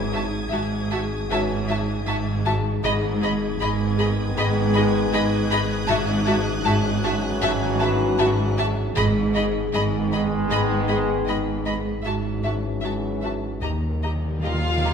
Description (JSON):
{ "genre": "cinematic", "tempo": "78 BPM", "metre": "4/4", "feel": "straight", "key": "G# minor", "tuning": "A4 = 441 Hz", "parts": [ { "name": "clear trombone section", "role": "sustained chords", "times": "0.0-14.9 s", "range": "D#3 to G#3", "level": "-30 LUFS", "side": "right 1 dB", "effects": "none" }, { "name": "dark French horn section", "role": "sustained chords", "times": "0.0-14.9 s", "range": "A#3 to A#4", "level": "-30 LUFS", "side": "left 3 dB", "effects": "none" }, { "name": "concert harp", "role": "riff", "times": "0.0-14.9 s", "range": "G#2 to D#4", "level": "-30 LUFS", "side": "left 6 dB", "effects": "none" }, { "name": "dark chamber cello section", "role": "bass", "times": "0.0-14.9 s", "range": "D#2 to G#2", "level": "-26 LUFS", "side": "right 2 dB", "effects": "none" }, { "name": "warm symphonic double bass section", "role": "bass", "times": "0.0-14.9 s", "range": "G#1 to D#2", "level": "-29 LUFS", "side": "right 2 dB", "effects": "none" }, { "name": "punchy sub bass", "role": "drone", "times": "0.0-14.9 s", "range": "G#1 to D#2", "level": "-33 LUFS", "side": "equal", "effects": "none" }, { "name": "warm chamber violin section", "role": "texture", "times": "0.0-8.5 s", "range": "D#6 to G#6", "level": "-34 LUFS", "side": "left 1 dB", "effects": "none" }, { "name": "warm studio violin section", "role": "second line", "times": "0.1-14.9 s", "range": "D#5 to E#5", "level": "-30 LUFS", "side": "left 1 dB", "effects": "none" }, { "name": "warm symphonic viola section", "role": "accompaniment", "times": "0.1-14.9 s", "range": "E#4 to G#4", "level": "-31 LUFS", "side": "right 2 dB", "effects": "none" }, { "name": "warm studio violin section", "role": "melody", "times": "0.2-14.9 s", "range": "A5 to B5", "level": "-30 LUFS", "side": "left 2 dB", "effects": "none" }, { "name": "timpani", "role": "percussion", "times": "2.8-14.9 s", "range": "G#2 to D#3", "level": "-32 LUFS", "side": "right 1 dB", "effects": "none" } ], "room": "wet scoring stage reverb, RT60 1.9 s", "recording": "minimal, uncompressed stereo recording", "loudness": "-20 LUFS", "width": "side -7 dB against mid", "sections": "0.0-14.9 A section", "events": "timpani fill 13.6-14.9", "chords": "0.0 N.C.; 2.8 G#m; 5.9 F#7(no3)/G#; 9.0 G#m; 12.1 F#m7/G#; 13.6 D#", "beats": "0.53 1.30 2.07 | 2.83 3.60 4.37 5.13 | 5.89 6.66 7.42 8.20 | 8.97 9.73 10.50 11.27 | 12.05 12.84 13.63 14.43" }